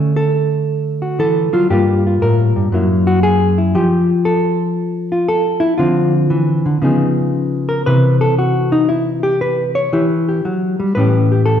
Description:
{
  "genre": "solo jazz",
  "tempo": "117 BPM",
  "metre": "4/4",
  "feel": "swing 68% on 8ths, rubato",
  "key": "unclear",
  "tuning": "A4 = 440 Hz",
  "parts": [
    { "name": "hollow-body jazz guitar", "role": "solo", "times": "0.0-11.6 s", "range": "F#2 to C#5", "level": "-13 LUFS", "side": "left 1 dB", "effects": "none" }
  ],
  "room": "wet recital hall reverb, RT60 1.4 s",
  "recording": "recorded in a church or concert hall",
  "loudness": "-13 LUFS",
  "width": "side -9 dB against mid",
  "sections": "0.0-11.6 A section",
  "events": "hollow-body jazz guitar solo 0.0-11.6",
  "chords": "0.0 Dmaj7; 1.7 Gm9; 2.7 F#7; 3.7 N.C.; 5.8 Dm9; 6.8 C#9; 7.9 C; 9.9 Emadd9; 10.9 A9",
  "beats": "0.16 0.67 1.19 | 1.70 2.21 2.72 3.23 | 3.74 4.25 4.76 5.26 | 5.78 6.29 6.80 7.33 | 7.86 8.37 8.89 9.41 | 9.92 10.44 10.95 11.46"
}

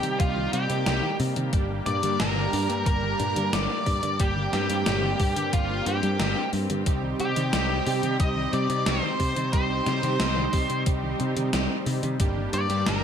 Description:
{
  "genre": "synthwave",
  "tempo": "90 BPM",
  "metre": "4/4",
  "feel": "straight",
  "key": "C minor",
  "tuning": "A4 = 440 Hz",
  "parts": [
    { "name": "octave-fuzz lead guitar", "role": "melody", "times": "0.0-13.0 s", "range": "F4 to Eb5", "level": "-29 LUFS", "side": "left 1 dB", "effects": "distortion, ping-pong delay" },
    { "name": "string machine, violins", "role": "second line", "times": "0.0-13.0 s", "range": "F4 to Eb5", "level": "-37 LUFS", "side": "equal", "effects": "ensemble chorus, ping-pong delay" },
    { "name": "lush unison pad", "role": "sustained chords", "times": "0.0-13.0 s", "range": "G3 to Eb4", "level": "-33 LUFS", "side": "left 1 dB", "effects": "chorus, sidechain pumping" },
    { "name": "soft round pluck", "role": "arpeggios", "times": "0.0-13.0 s", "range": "Bb2 to D4", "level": "-35 LUFS", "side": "left 2 dB", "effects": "none" },
    { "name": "analog synth brass", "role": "stabs", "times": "0.0-13.0 s", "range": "G3 to G4", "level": "-33 LUFS", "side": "right 4 dB", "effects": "chorus, ping-pong delay" },
    { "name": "picked electric bass", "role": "bass", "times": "0.0-13.0 s", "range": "G1 to C3", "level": "-29 LUFS", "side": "equal", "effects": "sidechain pumping" },
    { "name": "gated 80s digital drum machine", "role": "drums", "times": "0.0-13.0 s", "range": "hi-hat, snare drum", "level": "-29 LUFS", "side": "left 1 dB", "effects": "gated reverb, gated reverb snare, overdrive" },
    { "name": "electronic kick drum", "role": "drums", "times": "0.2-12.3 s", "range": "none", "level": "-25 LUFS", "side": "equal", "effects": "none" }
  ],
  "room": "light reverb",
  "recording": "none",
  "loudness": "-23 LUFS",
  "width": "side -8 dB against mid",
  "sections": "0.0-13.0 A section",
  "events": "none",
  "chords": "0.0 Cm; 1.5 Gm; 6.9 Cm; 12.2 Gm",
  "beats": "0.20 0.87 | 1.53 2.20 2.87 3.53 | 4.20 4.87 5.53 6.20 | 6.87 7.53 8.20 8.87 | 9.53 10.20 10.87 11.53 | 12.20 12.87"
}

